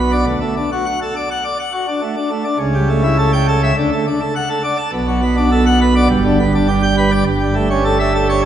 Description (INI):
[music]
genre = classical, organ toccata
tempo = 103 BPM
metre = 4/4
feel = straight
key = unclear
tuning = A4 = 440 Hz
[part]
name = pipe organ, plenum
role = solo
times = 0.0-8.5 s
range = G1 to A5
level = -13 LUFS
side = right 1 dB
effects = none
[sound]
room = wet church reverb, RT60 2.7 s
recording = none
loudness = -14 LUFS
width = side -10 dB against mid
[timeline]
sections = 0.0-8.5 A section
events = none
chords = 0.3 D; 2.6 A7/C#; 3.8 D; 4.9 Bm7; 6.1 G; 7.3 A7/G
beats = | 0.28 0.86 1.45 2.03 | 2.61 3.19 3.77 4.35 | 4.93 5.51 6.10 6.68 | 7.26 7.85 8.43